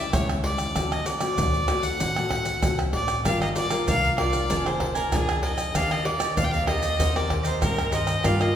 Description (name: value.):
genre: samba and choro.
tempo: 96 BPM.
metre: 4/4.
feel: straight.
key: unclear.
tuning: A4 = 440 Hz.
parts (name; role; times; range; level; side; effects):
bright fiddle; melody; 0.0-8.6 s; Ab4 to G5; -27 LUFS; equal; none.
nylon-string guitar; accompaniment; 0.0-8.6 s; A2 to Bb4; -30 LUFS; left 3 dB; none.
upright bass; bass; 0.0-8.5 s; F1 to G2; -30 LUFS; equal; none.
maracas, surdo, pandeiro and tamborim; percussion; 0.1-8.6 s; none; -26 LUFS; right 1 dB; none.
cavaquinho; accompaniment; 3.2-8.6 s; D4 to Ab5; -31 LUFS; right 3 dB; none.
room: wet recital hall reverb, RT60 1.6 s.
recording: recorded in a church or concert hall.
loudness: -22 LUFS.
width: side -9 dB against mid.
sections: 0.0-8.6 A section.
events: none.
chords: 0.0 A7/C#; 0.8 D7; 3.3 Gm7; 4.5 Bb7/F; 5.7 Ebmaj7; 7.0 Cm7/Eb.